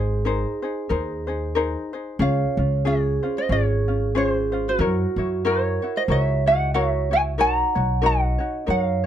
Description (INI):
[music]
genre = Hawaiian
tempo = 92 BPM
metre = 4/4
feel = swing 58% on 8ths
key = Db major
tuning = A4 = 440 Hz
[part]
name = ukulele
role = melody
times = 0.0-9.1 s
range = Bb4 to Bb5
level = -24 LUFS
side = equal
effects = none
[part]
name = vibraphone with soft mallets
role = second line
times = 0.0-9.1 s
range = Gb4 to Gb5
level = -27 LUFS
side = right 9 dB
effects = none
[part]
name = ukulele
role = accompaniment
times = 0.0-9.1 s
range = Db4 to Db5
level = -26 LUFS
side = left 5 dB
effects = none
[part]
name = upright bass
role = bass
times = 0.0-9.1 s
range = Ab1 to Gb2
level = -24 LUFS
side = equal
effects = none
[sound]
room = little or no reverb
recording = close, detailed microphones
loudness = -20 LUFS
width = side -10 dB against mid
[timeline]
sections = 0.0-2.2 A section; 2.2-9.1 B section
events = none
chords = 0.0 Abadd9; 2.2 Dbmaj7; 4.8 Gb7; 7.4 Cbmaj9